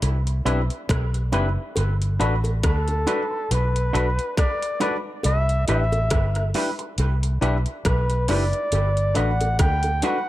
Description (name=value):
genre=lovers rock reggae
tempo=69 BPM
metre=4/4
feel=swing 56% on 16ths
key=G major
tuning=A4 = 440 Hz
part: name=vintage muted fingered electric bass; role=bass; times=0.0-10.0 s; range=F#1 to D2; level=-22 LUFS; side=equal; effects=none
part: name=drum and bass drum kit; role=drums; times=0.0-10.3 s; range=hi-hat, kick drum, rim click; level=-25 LUFS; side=equal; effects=gated reverb
part: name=bongos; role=percussion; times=0.0-10.3 s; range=none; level=-33 LUFS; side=right 2 dB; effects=dub echo
part: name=bell-like tine electric piano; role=accompaniment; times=0.5-10.2 s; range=D4 to B4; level=-30 LUFS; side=left 4 dB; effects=dub echo
part: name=electric guitar with an envelope filter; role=stabs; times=0.5-10.2 s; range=C4 to B4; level=-31 LUFS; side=right 3 dB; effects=dub echo
part: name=breathy flugelhorn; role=melody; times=2.7-10.3 s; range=A4 to G5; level=-26 LUFS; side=equal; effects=tape echo
room=light reverb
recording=none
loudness=-20 LUFS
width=side -15 dB against mid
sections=0.0-10.3 A section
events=none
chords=0.0 Cmaj7; 1.8 Gmaj7 (rootless); 5.2 Cmaj7; 8.7 Gmaj7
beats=0.03 0.89 | 1.76 2.63 3.50 4.37 | 5.24 6.11 6.98 7.85 | 8.72 9.59